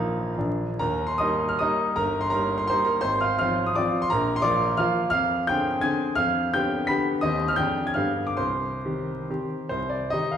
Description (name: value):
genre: classical, romantic triple-time dance for piano with dotted rhythms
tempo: 125-181 BPM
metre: 3/4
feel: rubato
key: Eb major, C minor from 5.1 s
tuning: A4 = 440 Hz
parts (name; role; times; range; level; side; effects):
- clear grand piano; solo; 0.0-10.4 s; G1 to B6; -22 LUFS; equal; none
room: wet recital hall reverb, RT60 1.6 s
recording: heard from further back in the room, vinyl crackle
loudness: -22 LUFS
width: side -8 dB against mid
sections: 0.8-9.7 A section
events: none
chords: 0.4 Bb; 0.8 Eb; 2.0 Eb/G; 3.0 Fm/Ab; 4.1 Bb; 5.1 Dm7b5/F; 6.2 G7/F; 7.3 Cm/Eb; 7.6 Ddim/F; 8.0 G7; 8.4 Cm